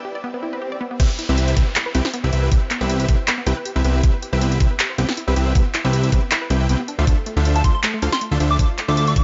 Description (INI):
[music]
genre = future bass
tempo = 158 BPM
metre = 4/4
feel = swing 54% on 16ths, half-time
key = C major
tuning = A4 = 440 Hz
[part]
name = unison pluck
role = arpeggios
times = 0.0-9.2 s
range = A3 to E5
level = -32 LUFS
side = equal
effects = sidechain pumping, tape echo
[part]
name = swell and downlifter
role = sound effects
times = 0.4-4.0 s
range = none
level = -36 LUFS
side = equal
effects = none
[part]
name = dense compressed supersaw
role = riff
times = 1.0-9.2 s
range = C4 to G5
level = -28 LUFS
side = equal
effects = sidechain pumping, tape echo
[part]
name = fat analog bass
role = bass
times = 1.0-9.2 s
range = C2 to D2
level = -21 LUFS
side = equal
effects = sidechain pumping
[part]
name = big-room dance drum kit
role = drums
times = 1.0-9.2 s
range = crash cymbal, handclaps, hi-hat, snare drum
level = -26 LUFS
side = equal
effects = high-pass filter on hats, high-pass filter on snare, high-pass filter on cymbals
[part]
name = electronic kick drum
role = drums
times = 1.0-9.2 s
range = none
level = -20 LUFS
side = equal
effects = none
[part]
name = plucky unison lead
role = melody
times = 7.6-9.2 s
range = A5 to D6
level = -26 LUFS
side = equal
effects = sidechain pumping
[sound]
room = digital ambience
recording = nothing above 7.6 kHz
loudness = -19 LUFS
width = mono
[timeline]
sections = 1.0-9.2 A section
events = break 0.0-1.0; swell 0.4-1.0; drop 1.0-9.2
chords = 0.0 E7(no3) (rootless); 1.0 Cmaj7; 6.9 Dm9